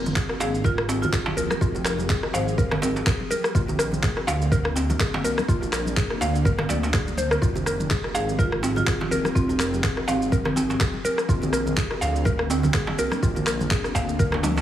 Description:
afro house; 124 BPM; 4/4; swing 56% on 16ths; F dorian; A4 = 441 Hz
ethereal airy pad; sustained chords; 0.0-14.6 s; F3 to Ab4; -32 LUFS; left 2 dB; ensemble chorus, built-in reverb, phaser, sidechain pumping
mallet-like synth pluck; arpeggios; 0.0-14.6 s; C4 to F5; -28 LUFS; equal; chorus, cassette tape, sidechain pumping, tape echo
dark detuned saw bass; bass; 0.0-14.6 s; Eb1 to D2; -27 LUFS; right 1 dB; sidechain pumping
deep house drum kit; drums; 0.1-14.6 s; handclaps, rim click, shaker, toms; -28 LUFS; left 1 dB; overdrive
congas; percussion; 0.1-14.6 s; -31 LUFS; right 1 dB
electronic kick drum; drums; 0.2-14.3 s; -24 LUFS; equal; overdrive
djembe; percussion; 0.3-14.6 s; -33 LUFS; right 4 dB
marimba with hard mallets; melody; 0.4-3.2, 8.1-10.6 s; C4 to C5; -30 LUFS; right 1 dB; tape echo
light reverb, digital ambience; heavily compressed radio sound, multiband compression, studio ambience; -21 LUFS; side -11 dB against mid
0.0-14.6 A section
drum fill 14.4
0.0 Fm; 3.5 Bbadd9; 7.4 Fm; 11.3 Bbadd9

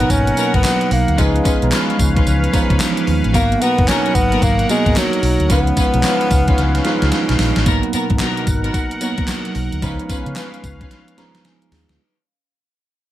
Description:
R&B, new jack swing; 111 BPM; 4/4; swing 63% on 16ths; G# dorian; A4 = 441 Hz
clear bassoon; melody; 0.0-7.1 s; F#3 to C#4; -20 LUFS; left 1 dB; tape echo
bright tine electric piano; accompaniment; 0.0-12.2 s; B2 to A#5; -21 LUFS; right 3 dB; phaser
sweeping resonant pad; sustained chords; 0.0-12.0 s; B2 to F#5; -25 LUFS; left 1 dB; chorus
dark studio string section; stabs; 0.0-11.4 s; B3 to B4; -25 LUFS; left 2 dB
vintage muted fingered electric bass; bass; 0.0-12.0 s; F#1 to C#3; -18 LUFS; equal
gated 80s digital drum machine; drums; 0.0-12.0 s; handclaps, hi-hat, kick drum, snare drum, tambourine; -19 LUFS; equal; gated reverb, gated reverb snare, overdrive
light reverb; -14 LUFS; side -13 dB against mid
0.0-7.7 A section; 7.7-12.0 B section
drum fill 6.6-7.7, 10.9-12.0; fade-out 7.7-12.0; tine electric piano fill 10.9-12.0
0.0 G#m9; 1.2 C#7; 3.3 G#m9; 5.5 C#7; 7.7 G#m9; 9.8 C#7

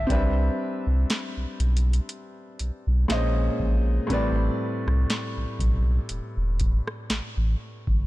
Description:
contemporary R&B; 60 BPM; 4/4; swing 54% on 16ths; A minor; A4 = 440 Hz
clear concert grand piano; accompaniment; 0.0-8.1 s; A2 to A5; -29 LUFS; equal
warm sub bass; bass; 0.0-8.1 s; E1 to C2; -23 LUFS; equal; tube saturation
booming analog drum machine; drums; 0.1-8.0 s; hi-hat, kick drum, rim click, snare drum; -27 LUFS; equal
digital ambience; blown-out, overdriven recording, overdrive; -23 LUFS; side -18 dB against mid
0.0-8.1 A section
0.1 Cmaj7; 3.1 Bbm11; 4.1 Am11

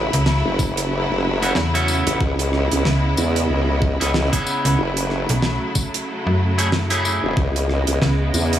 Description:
glitch hop; 93 BPM; 4/4; swing 58% on 16ths; C# minor; A4 = 438 Hz
bright studio string section; sustained chords; 0.0-8.6 s; C#3 to E4; -23 LUFS; right 1 dB; sidechain pumping
formant-sweep wobble bass; bass; 0.0-8.6 s; E1 to E2; -20 LUFS; equal; chorus
slap-like FM bass; bass; 0.1-8.3 s; B1 to F#2; -19 LUFS; equal
damped 70s drum kit; drums; 0.1-8.6 s; hi-hat, rim click, snare drum, tambourine; -24 LUFS; right 2 dB
electronic kick drum; drums; 0.6-7.5 s; -21 LUFS; equal; overdrive
electric guitar at the edge of break-up; stabs; 1.4-7.3 s; A3 to G#4; -25 LUFS; equal; spring reverb, sidechain pumping, digital delay
light reverb; -17 LUFS; side -11 dB against mid
0.0-8.6 A section
0.0 A6; 2.2 C#m7; 4.8 F#m7; 7.4 C#m7

